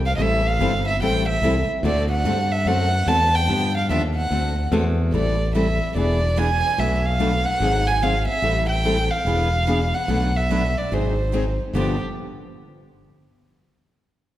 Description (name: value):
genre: acoustic string swing (jazz manouche)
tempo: 146 BPM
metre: 4/4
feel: swing 62% on 8ths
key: unclear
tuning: A4 = 440 Hz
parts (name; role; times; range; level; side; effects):
- modern bright fingered electric bass; bass; 0.0-12.0 s; E1 to G2; -22 LUFS; equal; none
- warm violin; melody; 0.1-12.0 s; G4 to A5; -23 LUFS; right 1 dB; none
- picked steel-string acoustic guitar; accompaniment; 0.2-12.0 s; G2 to A4; -26 LUFS; left 4 dB; none
- picked steel-string acoustic guitar; accompaniment; 0.2-12.0 s; G2 to B4; -30 LUFS; right 4 dB; none
room: moderate concert hall reverb, RT60 2.1 s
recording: recorded in a church or concert hall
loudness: -18 LUFS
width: side -13 dB against mid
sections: 0.0-5.1 A section; 5.1-11.7 B section; 11.7-13.4 C section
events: none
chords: 0.0 Am7; 1.8 D7; 3.5 G7; 4.3 D7; 5.1 Am7; 6.0 E7; 6.8 Bm7; 7.6 Ab7; 8.4 Am7; 9.3 E7b9; 10.1 Bm7; 10.9 Ab7; 11.7 G7